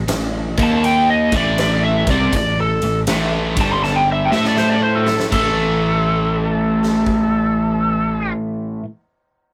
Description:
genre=blues rock power trio and southern rock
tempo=80 BPM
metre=4/4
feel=swing 66% on 8ths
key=A minor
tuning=A4 = 440 Hz
part: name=crunchy overdriven guitar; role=riff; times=0.0-8.8 s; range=G2 to A4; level=-21 LUFS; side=equal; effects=none
part: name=fuzz fingered electric bass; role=bass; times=0.0-8.3 s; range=G1 to A2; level=-24 LUFS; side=equal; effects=overdrive
part: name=big rock drum kit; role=drums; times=0.1-7.3 s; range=crash cymbal, kick drum, ride cymbal, snare drum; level=-26 LUFS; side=equal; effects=none
part: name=overdriven slide guitar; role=melody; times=0.6-8.3 s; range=A4 to C6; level=-21 LUFS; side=equal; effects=none
room=moderate booth ambience, RT60 0.3 s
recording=rough rehearsal-room recording, tube saturation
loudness=-17 LUFS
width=mono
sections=0.0-5.3 A section; 5.3-8.3 B section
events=drum fill 3.8-5.3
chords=0.5 D#5; 1.2 Am; 3.5 G5; 5.3 A5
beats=0.08 0.83 1.58 | 2.33 3.08 3.82 4.57 | 5.32 6.07 6.82 7.56

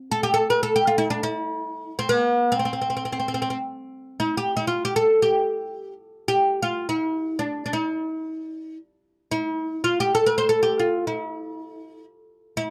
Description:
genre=Arabic maqam ensemble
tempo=free time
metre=none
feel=none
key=unclear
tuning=A4 = 440 Hz
part: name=oud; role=solo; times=0.1-12.7 s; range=Bb3+50c to C5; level=-24 LUFS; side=equal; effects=none
room=light reverb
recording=close, detailed microphones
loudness=-24 LUFS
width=mono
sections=0.0-4.0 A section; 4.0-12.7 A section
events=none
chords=none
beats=free time

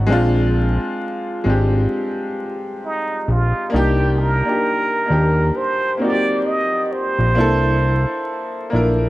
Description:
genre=lo-fi hip hop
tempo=66 BPM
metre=4/4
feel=swing 61% on 16ths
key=C minor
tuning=A4 = 440 Hz
part: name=clear upright piano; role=accompaniment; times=0.0-9.1 s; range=Ab3 to Bb4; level=-20 LUFS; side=left 1 dB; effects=none
part: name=fat analog bass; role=bass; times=0.0-9.1 s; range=Ab1 to Eb2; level=-17 LUFS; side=equal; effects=none
part: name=trumpet with plunger mute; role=melody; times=2.8-8.7 s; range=Eb4 to Eb5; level=-21 LUFS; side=right 2 dB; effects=analog delay
room=light reverb, small room ambience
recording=echo-heavy mix, vinyl crackle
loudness=-16 LUFS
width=side -17 dB against mid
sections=0.0-9.1 A section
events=none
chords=0.1 Bb7; 3.7 Cm7; 7.4 C13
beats=| 0.09 1.00 1.91 2.82 | 3.73 4.63 5.54 6.45 | 7.36 8.27

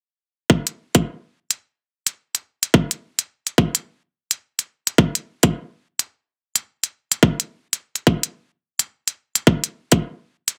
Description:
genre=glitch hop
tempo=107 BPM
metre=4/4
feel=swing 61% on 16ths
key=none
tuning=none
part: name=electronic kick drum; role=drums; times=0.5-10.0 s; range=none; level=-16 LUFS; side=equal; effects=high-pass filter on kick, high-pass filter on room
part: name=electronic hi-hat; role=drums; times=0.7-10.6 s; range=none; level=-20 LUFS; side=equal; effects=none
room=little or no reverb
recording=dense, heavily limited modern master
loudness=-22 LUFS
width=mono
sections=0.5-10.6 A section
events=none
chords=none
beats=| 0.49 1.06 1.62 2.18 | 2.74 3.30 3.86 4.42 | 4.98 5.54 6.10 6.66 | 7.22 7.79 8.35 8.91 | 9.47 10.03

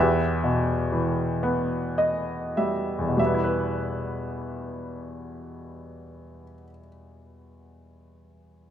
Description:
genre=classical, lyrical solo piano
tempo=30-45 BPM (dotted quarters)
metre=6/8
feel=rubato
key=E minor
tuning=A4 = 439 Hz
part: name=clear baby grand piano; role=solo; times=0.0-8.7 s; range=E2 to E5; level=-24 LUFS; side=equal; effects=none
room=moderate recital hall reverb, RT60 1.7 s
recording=minimal, uncompressed stereo recording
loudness=-24 LUFS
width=side -9 dB against mid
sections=0.0-3.2 A section; 3.2-7.0 B section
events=slowing down 0.0-3.2; grand piano fill 1.4-3.2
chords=0.0 Em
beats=1.41 | 3.19 5.10

